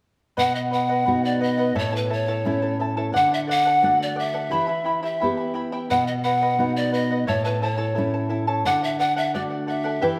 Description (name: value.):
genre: andean folk, Andean ensemble.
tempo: 87 BPM.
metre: 2/4.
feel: straight.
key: unclear.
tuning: A4 = 441 Hz.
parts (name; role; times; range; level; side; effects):
mellow polished pan flute; melody; 0.4-10.2 s; B4 to F#5; -25 LUFS; equal; none.
charango; accompaniment; 0.4-10.2 s; E4 to B5; -29 LUFS; equal; none.
nylon-string guitar; accompaniment; 0.4-10.2 s; A2 to G4; -28 LUFS; equal; none.
room: wet recital hall reverb, RT60 1.4 s.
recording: none.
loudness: -23 LUFS.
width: mono.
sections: 0.4-10.2 A section.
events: none.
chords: 0.4 B; 1.8 A; 3.1 D; 4.5 Em; 5.9 B; 7.3 A; 8.7 D.